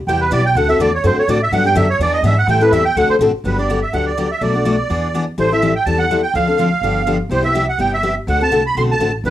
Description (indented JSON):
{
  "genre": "acoustic string swing (jazz manouche)",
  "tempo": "249 BPM",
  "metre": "4/4",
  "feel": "swing 55% on 8ths",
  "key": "G major",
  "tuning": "A4 = 439 Hz",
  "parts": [
    { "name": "upright bass", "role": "bass", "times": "0.0-9.3 s", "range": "G1 to A2", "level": "-20 LUFS", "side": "equal", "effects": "none" },
    { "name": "musette accordion", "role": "melody", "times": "0.1-9.3 s", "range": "B4 to C6", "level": "-17 LUFS", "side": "right 3 dB", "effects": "none" },
    { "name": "picked steel-string acoustic guitar", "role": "accompaniment", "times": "0.1-9.3 s", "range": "B2 to A4", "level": "-17 LUFS", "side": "left 3 dB", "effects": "none" }
  ],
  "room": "moderate studio ambience, RT60 0.5 s",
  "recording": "home recording on cassette",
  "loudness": "-13 LUFS",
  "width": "side -13 dB against mid",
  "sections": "0.0-3.4 A section; 3.4-9.3 B section",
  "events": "accordion solo 0.0-3.4",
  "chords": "0.0 Cmaj7; 0.6 D7; 1.5 Gmaj7; 2.0 E7; 2.5 Am7; 3.0 D7; 3.4 Gmaj7; 4.4 Bm7; 4.9 E7; 5.4 Am7; 6.3 Dm7; 6.8 G7; 7.3 Cmaj7; 8.3 D7",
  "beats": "0.07 0.31 | 0.55 0.79 1.03 1.27 | 1.51 1.75 1.99 2.23 | 2.48 2.72 2.96 3.20 | 3.44 3.68 3.92 4.16 | 4.41 4.65 4.89 5.13 | 5.37 5.61 5.85 6.09 | 6.34 6.58 6.82 7.06 | 7.30 7.54 7.79 8.03 | 8.27 8.51 8.75 8.99 | 9.23"
}